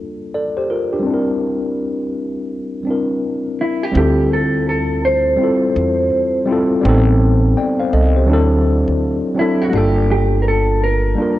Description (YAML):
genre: lo-fi hip hop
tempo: 83 BPM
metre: 4/4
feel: swing 62% on 16ths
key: D minor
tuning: A4 = 444 Hz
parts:
  - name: tine electric piano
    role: accompaniment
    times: 0.0-11.4 s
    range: F#3 to G5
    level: -17 LUFS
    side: left 1 dB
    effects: medium stereo tremolo, cassette tape, low-pass filter
  - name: mellow electric guitar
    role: melody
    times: 3.6-11.4 s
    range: E4 to C5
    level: -18 LUFS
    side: right 1 dB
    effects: lush chorus, low-pass filter
  - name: upright bass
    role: bass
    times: 4.0-11.1 s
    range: G1 to E2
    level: -16 LUFS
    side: right 1 dB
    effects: transformer saturation
room: moderate plate reverb, RT60 3.2 s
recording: worn, warbling old tape, cassette tape, warbly pitch drift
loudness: -14 LUFS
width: side -15 dB against mid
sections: 0.0-3.9 A section; 3.9-11.4 B section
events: none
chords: 0.0 Gm9; 1.1 C9; 3.9 Dm11; 6.8 Am7b5; 8.3 D7; 9.7 Gm9